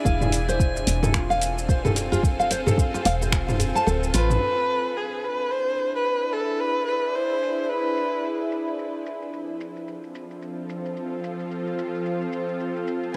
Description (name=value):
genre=organic downtempo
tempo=110 BPM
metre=4/4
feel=swing 58% on 16ths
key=unclear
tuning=A4 = 440 Hz
part: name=bowed-like drone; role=sustained chords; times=0.0-13.2 s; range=F3 to F5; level=-32 LUFS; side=equal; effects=built-in reverb, vintage 12-bit sampler grit, sidechain pumping
part: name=drifting glass-harmonics texture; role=texture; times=0.0-4.4 s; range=G#5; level=-40 LUFS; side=equal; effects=chorus, built-in reverb
part: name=nylon-string guitar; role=arpeggios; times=0.1-4.3, 13.1-13.2 s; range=F4 to A5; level=-29 LUFS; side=equal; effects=digital delay
part: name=woody FM bass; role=bass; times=0.1-4.4 s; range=D1 to A1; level=-28 LUFS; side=equal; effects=tube saturation, sidechain pumping
part: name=deep house drum kit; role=drums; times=0.1-13.1 s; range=crash cymbal, finger snaps, hi-hat, shaker, toms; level=-29 LUFS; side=equal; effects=overdrive, low-pass filter on perc, low-pass filter on hats, low-pass filter on toms, low-pass filter on snare, low-pass filter on cymbals, low-pass filter on room
part: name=electronic kick drum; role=drums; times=0.1-3.5 s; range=none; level=-24 LUFS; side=equal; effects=none
part: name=djembe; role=percussion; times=0.8-3.7 s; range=none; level=-32 LUFS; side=equal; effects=none
part: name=warm kamancheh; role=melody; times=4.1-8.5, 13.1-13.2 s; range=G#4 to C5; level=-28 LUFS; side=equal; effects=digital delay
room=moderate huge ambient reverb, RT60 7.8 s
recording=none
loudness=-25 LUFS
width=mono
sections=0.0-4.4 A section; 4.4-13.2 B section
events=kick drops out 3.9-4.4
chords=0.1 F/E; 4.4 E7; 8.8 F